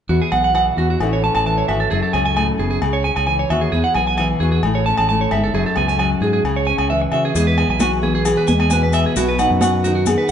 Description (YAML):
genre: highlife guitar band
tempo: 132 BPM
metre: 4/4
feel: straight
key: E major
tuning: A4 = 439 Hz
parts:
  - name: flamenco guitar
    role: accompaniment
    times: 0.1-10.3 s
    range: E2 to B4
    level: -21 LUFS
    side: left 2 dB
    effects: none
  - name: electric guitar at the edge of break-up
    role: arpeggios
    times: 0.1-10.3 s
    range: F#4 to A5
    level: -19 LUFS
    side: right 4 dB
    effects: spring reverb
  - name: fingered electric bass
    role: bass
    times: 0.1-10.1 s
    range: F#1 to C#3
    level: -20 LUFS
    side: equal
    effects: none
  - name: agogo bells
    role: percussion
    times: 0.3-10.2 s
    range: none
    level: -27 LUFS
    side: left 6 dB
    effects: none
  - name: congas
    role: percussion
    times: 7.3-10.2 s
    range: none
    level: -23 LUFS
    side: right 1 dB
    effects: none
  - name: maracas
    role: percussion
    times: 7.4-10.3 s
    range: none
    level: -30 LUFS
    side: left 7 dB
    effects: none
room: moderate large studio reverb, RT60 1.2 s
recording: band playing live in one room, nothing above 10.9 kHz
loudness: -15 LUFS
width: side -8 dB against mid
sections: 0.1-7.3 A section; 7.3-10.3 B section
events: none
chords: 0.1 Esus2; 1.0 A; 1.9 F#madd9; 2.8 C#m; 3.7 Eadd9; 4.6 A; 5.5 F#sus2; 6.4 C#m; 7.3 E; 9.2 B